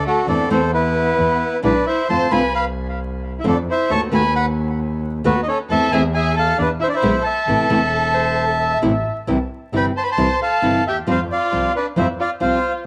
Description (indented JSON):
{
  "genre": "tango",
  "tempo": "134 BPM",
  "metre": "4/4",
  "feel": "rubato",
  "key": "A harmonic minor, C major from 9.3 s",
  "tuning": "A4 = 435 Hz",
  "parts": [
    { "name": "bandoneon", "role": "melody", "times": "0.0-12.7 s", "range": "E4 to C#6", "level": "-22 LUFS", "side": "equal", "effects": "cassette tape" },
    { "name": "warm studio violin section", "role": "second line", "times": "0.0-12.7 s", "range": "A3 to C#5", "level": "-28 LUFS", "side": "equal", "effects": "cassette tape" },
    { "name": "nylon-string guitar", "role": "accompaniment", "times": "0.3-12.6 s", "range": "B2 to F#4", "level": "-23 LUFS", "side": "equal", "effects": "cassette tape" },
    { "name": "rich double bass", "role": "bass", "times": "0.3-12.6 s", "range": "E1 to F2", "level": "-26 LUFS", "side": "equal", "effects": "none" },
    { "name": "clear clarinet", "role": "second line", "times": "8.1-9.2 s", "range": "A4 to E5", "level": "-27 LUFS", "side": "equal", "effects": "cassette tape" }
  ],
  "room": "light reverb, small room ambience",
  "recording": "home recording on cassette, vinyl crackle",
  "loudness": "-19 LUFS",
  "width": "mono",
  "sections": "0.0-9.3 A section; 9.3-12.9 B section",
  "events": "none",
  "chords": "0.3 Am/E; 1.2 E5; 2.1 F6; 3.9 B7/D#; 5.7 Am/E; 6.6 E7(no3); 7.5 Amadd9; 9.3 C; 11.1 Fsus2"
}